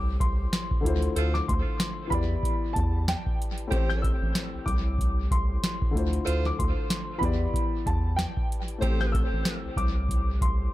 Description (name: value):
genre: hip hop, boom-bap hip-hop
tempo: 94 BPM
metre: 4/4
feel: swing 59% on 16ths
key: A minor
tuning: A4 = 440 Hz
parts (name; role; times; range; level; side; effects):
- warm upright piano; melody; 0.0-10.7 s; G5 to G6; -34 LUFS; left 1 dB; high-pass filter, low-pass filter, dub echo
- dark grand piano; accompaniment; 0.0-10.7 s; A2 to D5; -34 LUFS; left 5 dB; cassette tape, high-pass filter, low-pass filter
- round analog bass; bass; 0.0-10.7 s; A1 to E2; -27 LUFS; equal; none
- booming analog drum machine; drums; 0.2-10.6 s; hi-hat, kick drum, snare drum; -28 LUFS; equal; none
- warm saxophone section; stabs; 1.2-9.2 s; F4 to C5; -36 LUFS; right 3 dB; high-pass filter, low-pass filter, dub echo
room: studio reverb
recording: echo-heavy mix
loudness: -24 LUFS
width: side -16 dB against mid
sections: 0.0-10.7 A section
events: none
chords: 0.0 Am7; 0.8 Dm7; 2.1 Em7; 3.7 Am7; 5.9 Dm7; 7.2 Em7; 8.8 Am7